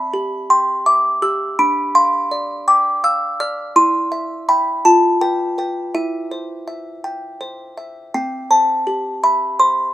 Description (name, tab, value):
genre	classical, lullaby for music box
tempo	55 BPM (dotted quarters)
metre	6/8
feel	straight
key	C major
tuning	A4 = 440 Hz
part	music box	solo	0.0-9.9 s	C4 to F6	-15 LUFS	equal	none
room	light reverb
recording	minimal, uncompressed stereo recording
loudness	-14 LUFS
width	side -14 dB against mid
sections	0.0-8.1 A section; 8.1-9.9 A section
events	none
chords	0.0 C; 1.6 G5/D; 3.8 C/E; 4.8 G7/F; 5.9 C/E; 8.1 C